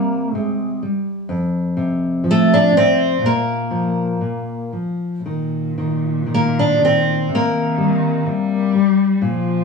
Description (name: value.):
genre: fado-style ballad.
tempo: 57-64 BPM.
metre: 2/4.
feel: rubato.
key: unclear.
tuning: A4 = 440 Hz.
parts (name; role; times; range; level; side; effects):
fingerpicked twelve-string acoustic guitar; melody; 0.0-8.7 s; A3 to D4; -17 LUFS; equal; none.
nylon-string guitar; accompaniment; 0.0-9.6 s; F2 to G3; -20 LUFS; left 2 dB; none.
dark cello; second line; 5.2-9.6 s; A2 to G3; -21 LUFS; left 1 dB; none.
room: wet studio reverb, RT60 0.7 s.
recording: band playing live in one room.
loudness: -16 LUFS.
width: side -4 dB against mid.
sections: 0.0-9.6 A section.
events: none.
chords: 0.0 C5; 1.3 F5; 3.2 Bb5; 5.2 N.C.; 7.3 Cm7.